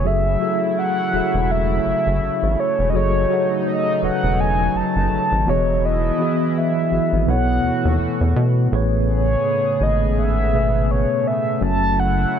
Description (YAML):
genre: R&B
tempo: 83 BPM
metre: 4/4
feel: swing 58% on 16ths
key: unclear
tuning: A4 = 440 Hz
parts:
  - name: mellow horn-like synth lead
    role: melody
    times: 0.0-12.4 s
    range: C#5 to A5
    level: -22 LUFS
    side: equal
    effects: chorus, tape echo
  - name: mellow tine electric piano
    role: accompaniment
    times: 0.0-12.4 s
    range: A2 to F#5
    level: -22 LUFS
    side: equal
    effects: medium stereo tremolo
  - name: chorused pulse-width pad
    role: sustained chords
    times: 0.0-12.4 s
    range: C#3 to G#4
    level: -25 LUFS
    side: equal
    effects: none
  - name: rubbery square bass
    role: bass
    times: 0.0-12.3 s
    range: E1 to B2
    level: -20 LUFS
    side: equal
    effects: none
room: digital ambience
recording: none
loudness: -17 LUFS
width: side -8 dB against mid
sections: 0.0-8.7 A section; 8.7-12.4 B section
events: none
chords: 0.0 F#m7; 2.9 B13; 5.5 Emaj7; 7.3 B7sus4; 8.7 Amaj9; 11.6 F#m7